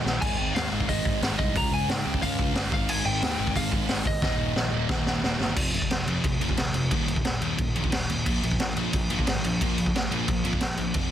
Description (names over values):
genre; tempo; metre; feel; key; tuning
punk rock; 179 BPM; 4/4; straight; Eb mixolydian; A4 = 440 Hz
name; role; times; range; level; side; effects
sludgy distorted guitar; riff; 0.0-11.1 s; Eb2 to Db4; -31 LUFS; left 10 dB; overdrive
sludgy distorted guitar; riff; 0.0-11.1 s; Eb2 to Ab4; -32 LUFS; right 12 dB; overdrive
fuzz picked electric bass; bass; 0.0-11.1 s; Eb1 to Ab2; -32 LUFS; equal; overdrive
raw garage drum kit; drums; 0.1-11.0 s; crash cymbal, hi-hat, kick drum, snare drum; -26 LUFS; equal; none
lightly driven lead guitar; melody; 0.2-5.4 s; Eb5 to Bb5; -31 LUFS; equal; none
room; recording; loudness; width
little or no reverb; dense, heavily limited modern master; -23 LUFS; side -10 dB against mid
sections
0.0-5.6 A section; 5.6-11.1 B section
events
drum fill 0.0, 4.2-5.6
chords
0.2 Ab; 1.6 Db; 2.7 Ab; 4.2 Eb; 5.6 F5; 6.9 Eb5; 8.3 Bb5